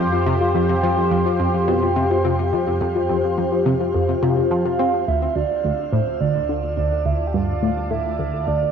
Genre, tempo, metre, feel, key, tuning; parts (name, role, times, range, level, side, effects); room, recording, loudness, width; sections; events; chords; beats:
ambient, sequencer-driven space music; 106 BPM; 4/4; straight; A4 = 444 Hz
sweeping resonant pad; sustained chords; 0.0-8.7 s; D4 to A5; -23 LUFS; left 1 dB; chorus, cassette tape, shimmer reverb
soft round pluck; arpeggios; 0.0-4.9 s; F4; -26 LUFS; moving between left 9 dB and equal; chorus, auto-pan, cassette tape, shimmer reverb, ping-pong delay
tight sequenced synth; riff; 0.0-8.7 s; D2 to C4; -23 LUFS; equal; chorus, phaser, cassette tape, shimmer reverb, ping-pong delay
fat analog bass; bass; 0.0-8.7 s; D2 to F2; -26 LUFS; equal; tube saturation
soft octave-layered synth lead; melody; 4.5-8.7 s; C5 to G5; -23 LUFS; right 8 dB; chorus, phaser, cassette tape, shimmer reverb, ping-pong delay
wet spring reverb, RT60 1.1 s; home recording on cassette; -18 LUFS; side -7 dB against mid
0.0-5.1 A section; 5.1-8.7 B section
0.0 Fsus2; 5.1 Dmadd9
| 0.55 1.11 1.68 2.25 | 2.81 3.38 3.94 4.51 | 5.08 5.64 6.21 6.78 | 7.34 7.91 8.47